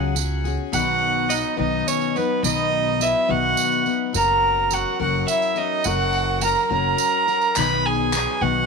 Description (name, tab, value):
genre	indie folk with a building arrangement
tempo	70 BPM (dotted quarters)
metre	6/8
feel	straight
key	unclear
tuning	A4 = 440 Hz
part	warm fiddle	melody	0.0-8.7 s	B4 to B5	-21 LUFS	right 1 dB	none
part	picked steel-string acoustic guitar	accompaniment	0.0-8.7 s	B2 to B4	-25 LUFS	left 13 dB	none
part	upright bass	bass	0.0-8.6 s	F#1 to C#2	-27 LUFS	right 1 dB	none
part	tambourine	percussion	0.2-8.3 s	none	-29 LUFS	right 18 dB	none
part	mellow trumpet	second line	0.7-8.7 s	B3 to B4	-26 LUFS	right 14 dB	none
part	group handclap	percussion	7.6-8.4 s	none	-29 LUFS	left 14 dB	none
room	light reverb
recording	1960s-style stereo with parts hard left and right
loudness	-18 LUFS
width	side -4 dB against mid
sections	0.7-8.7 A section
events	none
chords	0.0 C#sus4; 0.7 B; 4.2 F#; 7.6 B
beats	| 0.73 1.58 | 2.44 3.29 | 4.15 5.00 | 5.86 6.71 | 7.57 8.42